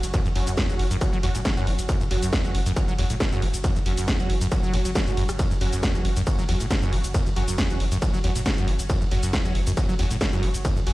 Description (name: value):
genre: driving peak-time techno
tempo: 137 BPM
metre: 4/4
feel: straight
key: unclear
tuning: A4 = 440 Hz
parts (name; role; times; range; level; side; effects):
- rave stab; stabs; 0.0-10.9 s; F#3 to F#4; -32 LUFS; right 1 dB; chorus, built-in reverb, sidechain pumping, tape echo
- saturated sub bass; bass; 0.0-10.9 s; F#1; -28 LUFS; equal; overdrive, sidechain pumping, low-pass filter
- techno drum kit; drums; 0.0-10.9 s; hi-hat, ride cymbal, rim click, shaker, snare drum; -30 LUFS; equal; sidechain pumping on hats, sidechain pumping on perc, sidechain pumping on cymbals
- acid bass, saw; riff; 0.1-10.9 s; E2 to F#3; -28 LUFS; equal; wide subtle chorus, sidechain pumping, tape echo
- electronic kick drum; drums; 0.1-10.7 s; none; -24 LUFS; equal; distortion
room: little or no reverb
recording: played on a big sound system in a bare room, stone room reverb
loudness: -21 LUFS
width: side -18 dB against mid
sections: 0.0-10.9 A section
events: none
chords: 0.0 F#5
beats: | 0.14 0.58 1.01 1.45 | 1.89 2.33 2.77 3.20 | 3.64 4.08 4.52 4.96 | 5.39 5.83 6.27 6.71 | 7.14 7.58 8.02 8.46 | 8.90 9.34 9.77 10.21 | 10.65